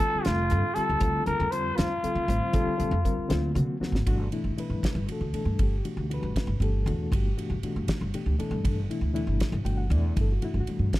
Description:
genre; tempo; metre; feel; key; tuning
electric jazz fusion; 79 BPM (dotted quarters); 6/8; straight; G major from 4.1 s; A4 = 436 Hz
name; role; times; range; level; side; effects
growling trumpet; melody; 0.0-3.6 s; F4 to C5; -28 LUFS; left 1 dB; none
reed electric piano; accompaniment; 0.0-11.0 s; B2 to G5; -31 LUFS; left 2 dB; overdrive, medium tremolo
damped 70s drum kit; drums; 0.0-11.0 s; hi-hat, kick drum, ride cymbal, snare drum; -29 LUFS; equal; none
upright bass; bass; 0.1-11.0 s; F1 to D3; -27 LUFS; equal; none
room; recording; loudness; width
little or no reverb; dark, warm production; -24 LUFS; side -16 dB against mid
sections
0.0-4.1 A section; 4.1-11.0 B section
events
drum fill 3.8; reed electric piano fill 9.4-10.2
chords
0.0 G9sus4; 1.0 Dm7; 2.5 Bb69; 3.3 D7alt; 4.1 Gmaj9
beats
0.26 | 1.02 1.78 | 2.55 3.31 | 4.07 4.83 | 5.60 6.36 | 7.12 7.89 | 8.65 9.41 | 10.18 10.94

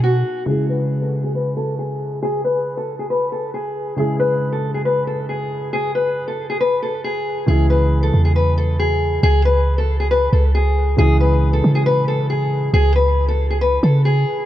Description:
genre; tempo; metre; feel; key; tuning
hip hop, trap; 137 BPM; 4/4; half-time; C# minor; A4 = 440 Hz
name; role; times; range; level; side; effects
fingerpicked steel-string acoustic guitar; melody; 0.0-14.5 s; F#4 to B4; -20 LUFS; left 2 dB; low-pass filter, dub echo
dark concert grand piano; accompaniment; 0.0-14.5 s; B2 to G#4; -24 LUFS; equal; low-pass filter, dub echo
clean 808-style bass; bass; 0.0-0.2, 7.5-14.3 s; C#2 to C#3; -16 LUFS; equal; none
room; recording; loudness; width
light reverb, small room ambience; echo-heavy mix; -16 LUFS; side -13 dB against mid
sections
0.5-7.5 A section; 7.5-14.5 B section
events
filter sweep 0.5-7.5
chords
0.5 C#m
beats
0.04 | 0.47 0.91 1.35 1.79 | 2.23 2.66 3.10 3.54 | 3.98 4.42 4.85 5.29 | 5.73 6.17 6.61 7.04 | 7.48 7.92 8.36 8.79 | 9.23 9.67 10.11 10.55 | 10.98 11.42 11.86 12.30 | 12.74 13.17 13.61 14.05

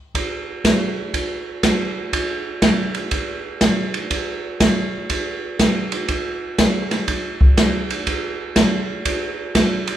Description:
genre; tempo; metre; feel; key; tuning
jazz; 121 BPM; 4/4; swing 66% on 8ths; none; none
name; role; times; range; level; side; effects
open jazz drum kit; drums; 0.1-10.0 s; hi-hat, kick drum, ride cymbal, snare drum; -18 LUFS; right 1 dB; none
room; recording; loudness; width
moderate recital hall reverb, RT60 1.5 s; recorded in a church or concert hall; -18 LUFS; side -11 dB against mid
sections
0.1-10.0 A section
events
none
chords
none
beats
| 0.14 0.64 1.14 1.63 | 2.12 2.62 3.12 3.61 | 4.11 4.60 5.10 5.59 | 6.09 6.58 7.08 7.57 | 8.06 8.56 9.05 9.55

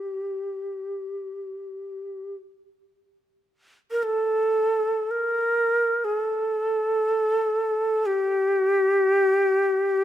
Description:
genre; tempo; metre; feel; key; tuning
japanese traditional; free time; none; none; G hirajoshi; A4 = 439 Hz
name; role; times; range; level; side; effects
breathy shakuhachi; solo; 0.0-10.0 s; G4 to Bb4; -22 LUFS; equal; none
room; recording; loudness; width
light reverb; close, detailed microphones; -21 LUFS; side -12 dB against mid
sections
0.0-10.0 A section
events
none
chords
none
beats
free time

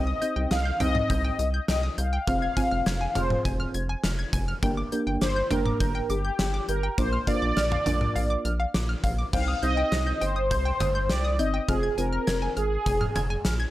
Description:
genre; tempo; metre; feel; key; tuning
synth-pop; 102 BPM; 4/4; straight; C minor; A4 = 442 Hz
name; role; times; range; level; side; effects
mellow synth brass; melody; 0.0-13.7 s; G4 to F5; -28 LUFS; equal; chorus, analog delay
muted felt-like synth keys; accompaniment; 0.0-12.6 s; Bb3 to Eb5; -31 LUFS; right 1 dB; chorus
analog pluck; arpeggios; 0.0-13.7 s; F5 to Ab6; -35 LUFS; equal; chorus
rubbery square bass; bass; 0.0-13.7 s; F1 to C2; -28 LUFS; equal; none
gated 80s drum kit; drums; 0.2-13.6 s; crash cymbal, hi-hat, kick drum, snare drum, toms; -29 LUFS; equal; none
room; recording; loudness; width
small room ambience; none; -23 LUFS; side -15 dB against mid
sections
0.0-9.3 A section; 9.3-13.7 B section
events
none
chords
0.0 Cm; 2.3 Fm; 4.6 Gm; 7.0 Bb; 9.3 Cm; 11.7 Fm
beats
0.51 1.10 1.69 | 2.27 2.86 3.45 4.04 | 4.63 5.22 5.80 6.39 | 6.98 7.57 8.16 8.74 | 9.33 9.92 10.51 11.10 | 11.69 12.28 12.86 13.45

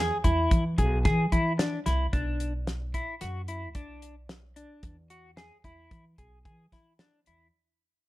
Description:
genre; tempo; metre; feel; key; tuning
progressive instrumental, band music in an uneven meter; 111 BPM; 5/4; straight; unclear; A4 = 440 Hz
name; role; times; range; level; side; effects
clean electric guitar; arpeggios; 0.0-7.5 s; D4 to G#4; -31 LUFS; left 1 dB; analog chorus, plate reverb
upright bass; bass; 0.0-7.5 s; B1 to E3; -29 LUFS; equal; none
damped 70s drum kit; drums; 0.2-7.4 s; hi-hat, kick drum, snare drum; -27 LUFS; equal; none
room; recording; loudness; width
light reverb; none; -25 LUFS; side -17 dB against mid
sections
0.0-7.5 A section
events
fade-out 0.0-7.5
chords
0.0 E; 2.1 Bm; 4.8 E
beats
0.51 1.05 1.59 | 2.13 2.67 3.21 3.75 4.29 | 4.83 5.37 5.91 6.46 7.00

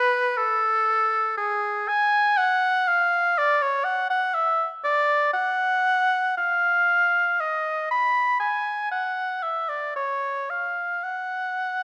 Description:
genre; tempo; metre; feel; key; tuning
classical, baroque-style fantasia for unaccompanied oboe; 60 BPM; 3/4; rubato; unclear; A4 = 440 Hz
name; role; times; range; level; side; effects
clear oboe; solo; 0.0-11.8 s; G#4 to B5; -23 LUFS; equal; none
room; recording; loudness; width
moderate recital hall reverb, RT60 1.7 s; nothing above 10.7 kHz; -23 LUFS; mono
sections
0.0-11.8 A section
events
none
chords
none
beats
0.87 | 1.87 2.87 3.86 | 4.85 5.86 6.88 | 7.90 8.91 9.96 | 11.04

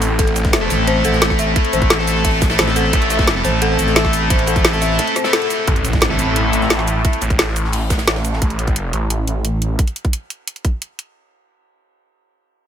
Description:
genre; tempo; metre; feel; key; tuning
dark technical drum and bass; 175 BPM; 4/4; straight; A minor; A4 = 438 Hz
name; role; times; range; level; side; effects
sweeping resonant pad; sustained chords; 0.0-7.0 s; A3 to A4; -25 LUFS; left 2 dB; chorus, sidechain pumping
snarling distorted saw bass; bass; 0.0-0.7, 2.9-3.4, 5.7-9.8 s; A1; -19 LUFS; equal; tube saturation
drum and bass drum kit; drums; 0.0-11.1 s; cabasa, hi-hat, snare drum; -19 LUFS; equal; none
loose indie drum kit; drums; 0.0-8.4 s; hi-hat, ride cymbal, snare drum; -28 LUFS; right 1 dB; none
dark detuned synth bell; arpeggios; 0.2-5.5 s; A4 to E5; -23 LUFS; left 3 dB; chorus, sidechain pumping, ping-pong delay
electronic kick drum; drums; 0.2-10.7 s; none; -17 LUFS; equal; none
distorted electric guitar; stabs; 0.6-7.2 s; A3 to A4; -20 LUFS; equal; overdrive, low-pass filter, ping-pong delay
growling FM bass; bass; 0.7-5.0 s; A1; -19 LUFS; equal; none
impact; sound effects; 5.7-7.0 s; none; -28 LUFS; equal; none
room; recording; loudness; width
light reverb; none; -14 LUFS; side -9 dB against mid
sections
0.0-5.7 A section; 5.7-11.2 B section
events
drop 0.0-5.7; band accent 5.3; impact 5.7-7.0; filter sweep on detuned saw bass 5.7-9.8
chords
0.0 Am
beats
| 0.19 0.53 0.88 1.22 | 1.56 1.90 2.25 2.59 | 2.93 3.27 3.62 3.96 | 4.30 4.65 4.99 5.33 | 5.67 6.02 6.36 6.70 | 7.05 7.39 7.73 8.07 | 8.42 8.76 9.10 9.45 | 9.79 10.13 10.47 10.82

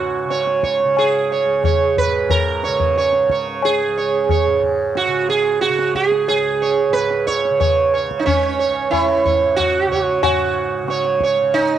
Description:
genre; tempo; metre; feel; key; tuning
indian classical, Hindustani; 91 BPM; 4/4; straight; unclear; A4 = 440 Hz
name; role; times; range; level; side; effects
sitar; melody; 0.0-11.8 s; C#4 to C#5; -16 LUFS; right 4 dB; cassette tape
tanpura; drone; 0.0-11.8 s; C#2 to C#3; -30 LUFS; left 2 dB; none
tabla; percussion; 0.3-11.8 s; none; -22 LUFS; left 6 dB; none
room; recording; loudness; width
light reverb; home recording on cassette; -15 LUFS; side -10 dB against mid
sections
0.0-10.2 A section; 10.2-11.8 B section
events
none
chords
none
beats
0.31 0.97 1.64 | 2.31 2.97 3.63 4.30 | 4.96 5.62 6.28 6.95 | 7.60 8.26 8.92 9.58 | 10.24 10.89 11.55

